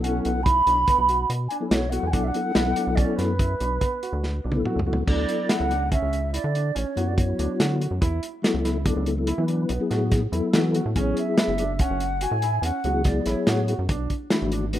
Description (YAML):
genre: progressive instrumental, band music in an uneven meter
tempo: 143 BPM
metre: 7/4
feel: straight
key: B dorian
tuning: A4 = 440 Hz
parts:
  - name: mellow wooden flute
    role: melody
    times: 0.0-13.7 s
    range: B4 to B5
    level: -26 LUFS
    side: right 2 dB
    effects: slapback echo
  - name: mellow tonewheel organ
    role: accompaniment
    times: 0.0-14.8 s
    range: E3 to B4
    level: -26 LUFS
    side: left 3 dB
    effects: chorus vibrato, fast rotary speaker
  - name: warm concert grand piano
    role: arpeggios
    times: 0.0-14.8 s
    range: B3 to F#4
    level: -33 LUFS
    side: right 5 dB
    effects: none
  - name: rubbery square bass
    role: bass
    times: 0.0-14.8 s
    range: F#1 to E3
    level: -26 LUFS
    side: equal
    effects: none
  - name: warm soul drum kit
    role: drums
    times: 0.0-14.8 s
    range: crash cymbal, hi-hat, kick drum, snare drum, toms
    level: -25 LUFS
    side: equal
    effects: none
room: light reverb, small room reverb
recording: rough home demo mix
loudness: -21 LUFS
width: side -12 dB against mid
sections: 0.0-5.1 A section; 5.1-14.8 B section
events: drum fill 4.2-5.1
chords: 0.0 Bm9; 5.1 Dmaj7; 8.0 Esus4; 11.0 A6; 13.9 Bm